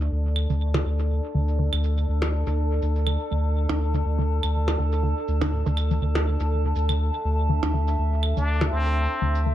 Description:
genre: minimal techno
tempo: 122 BPM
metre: 4/4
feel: swing 56% on 16ths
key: unclear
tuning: A4 = 442 Hz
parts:
  - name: saturated sub bass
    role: bass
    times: 0.0-9.5 s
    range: D2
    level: -23 LUFS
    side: equal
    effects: none
  - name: shaker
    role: drums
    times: 0.0-9.4 s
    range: none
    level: -52 LUFS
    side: right 7 dB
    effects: low-pass filter on perc, studio reverb, low-pass filter on hats, low-pass filter on snare, analog delay
  - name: warbly tape-like pad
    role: texture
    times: 0.0-9.5 s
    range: D4 to A5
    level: -30 LUFS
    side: equal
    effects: chorus, built-in reverb
  - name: claves and percussion blips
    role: percussion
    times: 0.4-8.7 s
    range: none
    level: -30 LUFS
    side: right 2 dB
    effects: studio reverb, dub echo
  - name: hollow square pluck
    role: riff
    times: 0.5-9.5 s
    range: A2 to E3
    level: -30 LUFS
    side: equal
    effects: chorus, phaser, dub echo
  - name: trumpet with plunger mute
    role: melody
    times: 8.4-9.4 s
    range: C4 to D4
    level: -27 LUFS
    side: left 1 dB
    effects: analog delay
room: light reverb, digital ambience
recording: echo-heavy mix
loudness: -22 LUFS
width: side -12 dB against mid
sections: 0.0-9.5 A section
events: filter sweep on synth arpeggio sound 0.0-9.5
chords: 0.0 D5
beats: | 0.12 0.61 1.10 1.59 | 2.08 2.57 3.07 3.56 | 4.05 4.54 5.03 5.53 | 6.02 6.51 7.00 7.49 | 7.98 8.48 8.97 9.46

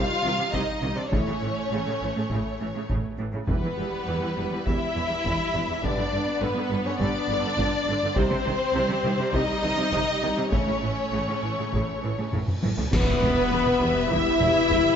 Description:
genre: cinematic, epic orchestral film score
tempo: 102 BPM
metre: 4/4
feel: straight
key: E dorian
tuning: A4 = 441 Hz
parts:
  - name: dark studio violin section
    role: melody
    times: 0.0-15.0 s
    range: B4 to F5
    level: -30 LUFS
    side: left 2 dB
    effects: none
  - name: rich studio violin section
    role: second line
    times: 0.0-15.0 s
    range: B3 to E5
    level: -30 LUFS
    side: left 2 dB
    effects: none
  - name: rich symphonic viola section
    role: accompaniment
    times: 0.0-15.0 s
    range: C3 to E4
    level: -31 LUFS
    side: right 1 dB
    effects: none
  - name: clear French horn section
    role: sustained chords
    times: 0.0-15.0 s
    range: G3 to E4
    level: -28 LUFS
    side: left 5 dB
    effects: none
  - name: rich symphonic cello section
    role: bass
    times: 0.2-14.8 s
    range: E2 to C3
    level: -32 LUFS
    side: right 2 dB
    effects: none
  - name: rich symphonic double bass section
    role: bass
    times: 0.2-14.8 s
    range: E1 to C2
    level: -32 LUFS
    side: right 3 dB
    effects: none
  - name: taiko ensemble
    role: drums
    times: 0.5-15.0 s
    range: none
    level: -30 LUFS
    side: equal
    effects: none
  - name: cymbal swell, clash cymbals and concert bass drum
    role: percussion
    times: 10.5-14.1 s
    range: none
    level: -33 LUFS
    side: equal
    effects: none
  - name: reverse cymbal and impact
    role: sound effects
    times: 12.3-15.0 s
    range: none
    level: -40 LUFS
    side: equal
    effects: none
  - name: mellow hollow large flute ensemble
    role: second line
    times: 12.9-15.0 s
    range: B4 to E5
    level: -29 LUFS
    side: right 4 dB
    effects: none
  - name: warm symphonic string section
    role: sustained chords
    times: 12.9-15.0 s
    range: G3 to E5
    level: -30 LUFS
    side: left 1 dB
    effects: none
  - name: timpani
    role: percussion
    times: 12.9-13.8 s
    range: E2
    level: -34 LUFS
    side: equal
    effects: none
room: moderate scoring stage reverb, RT60 1.7 s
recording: nothing above 7.7 kHz, faint mains hum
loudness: -22 LUFS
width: side -8 dB against mid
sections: 0.0-12.9 A section; 12.9-15.0 A section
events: reverse cymbal 12.3-12.9; drum fill 12.3-12.9; band accent 12.9-13.5; impact 12.9-15.0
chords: 0.0 Cm; 1.1 A; 3.5 Em; 5.8 G; 8.2 Cm; 10.5 A; 12.9 Em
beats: 0.53 | 1.12 1.72 2.31 2.90 | 3.49 4.07 4.67 5.25 | 5.84 6.42 7.00 7.58 | 8.16 8.75 9.33 9.92 | 10.52 11.13 11.73 12.33 | 12.93 13.52 14.12 14.70

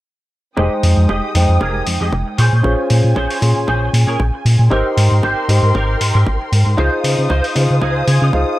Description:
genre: nu-disco, nu disco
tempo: 116 BPM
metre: 4/4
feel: swing 55% on 16ths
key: F minor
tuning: A4 = 439 Hz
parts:
  - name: warm concert grand piano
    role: accompaniment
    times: 0.6-8.6 s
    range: Ab3 to C6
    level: -21 LUFS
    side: left 1 dB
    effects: sidechain pumping, tape echo
  - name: dark studio string section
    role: sustained chords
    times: 0.6-8.6 s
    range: Ab3 to Eb6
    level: -23 LUFS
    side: equal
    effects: sidechain pumping
  - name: clean electric guitar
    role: riff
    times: 0.6-8.6 s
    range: C4 to Ab5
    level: -23 LUFS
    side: right 1 dB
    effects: ensemble chorus, low-pass filter, tape echo
  - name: chorused synth bass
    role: bass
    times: 0.6-8.4 s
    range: F1 to Db3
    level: -14 LUFS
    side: equal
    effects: none
  - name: electronic kick drum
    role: drums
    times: 0.6-8.4 s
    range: none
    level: -23 LUFS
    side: equal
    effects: high-pass filter on kick
  - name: electronic hi-hat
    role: drums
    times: 0.8-8.2 s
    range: none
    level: -24 LUFS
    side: left 1 dB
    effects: overdrive
room: little or no reverb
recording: dry, gritty hardware recording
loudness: -12 LUFS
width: side -16 dB against mid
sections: 0.6-8.6 A section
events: filter sweep on analog synth bass 0.6-8.6; clean electric guitar fill 7.8-8.6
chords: 0.6 Fm9; 2.4 Bbm9; 4.7 Abmaj9; 6.8 Dbmaj9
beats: | 0.58 1.09 1.61 2.13 | 2.65 3.16 3.68 4.20 | 4.71 5.23 5.75 6.26 | 6.78 7.30 7.82 8.33

